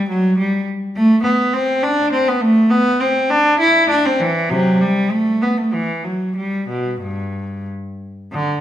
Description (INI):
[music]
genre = classical, baroque-style suite movement for unaccompanied cello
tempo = 90-104 BPM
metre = 3/4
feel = rubato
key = G major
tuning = A4 = 441 Hz
[part]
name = rich cello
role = solo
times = 0.0-8.6 s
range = G2 to E4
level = -15 LUFS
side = equal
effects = none
[sound]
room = wet recital hall reverb, RT60 1.4 s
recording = minimal, uncompressed stereo recording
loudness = -14 LUFS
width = side -11 dB against mid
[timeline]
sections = 0.0-8.3 A section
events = none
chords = none